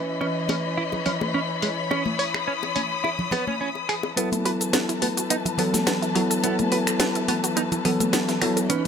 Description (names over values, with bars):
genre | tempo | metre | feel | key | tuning
nu-disco, nu disco | 106 BPM | 4/4 | swing 54% on 16ths | unclear | A4 = 444 Hz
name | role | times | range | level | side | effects
mellow tine electric piano | accompaniment | 0.0-8.9 s | E3 to D#5 | -26 LUFS | equal | vintage 12-bit sampler grit, digital delay
warm studio string section | sustained chords | 0.0-8.9 s | E3 to D#6 | -28 LUFS | left 5 dB | none
direct-recorded clean electric guitar | riff | 0.2-8.8 s | F#3 to C#5 | -29 LUFS | right 4 dB | analog chorus, vintage 12-bit sampler grit, low-pass filter, digital delay
bongos and congas | percussion | 0.2-8.9 s | none | -30 LUFS | left 2 dB | none
house drum kit | drums | 0.5-8.9 s | finger snaps, hi-hat, shaker, snare drum | -26 LUFS | left 1 dB | low-pass filter on hats, low-pass filter on snare, low-pass filter on perc, low-pass filter on room
wide unison pluck | arpeggios | 4.2-8.9 s | B3 to A4 | -31 LUFS | right 6 dB | tape echo
room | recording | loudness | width
light reverb | none | -21 LUFS | side -7 dB against mid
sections
0.0-4.2 A section; 4.2-8.9 B section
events
filter sweep on string section 0.0-4.2; build-up 4.2-8.9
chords
0.0 C#m9; 4.2 B7sus4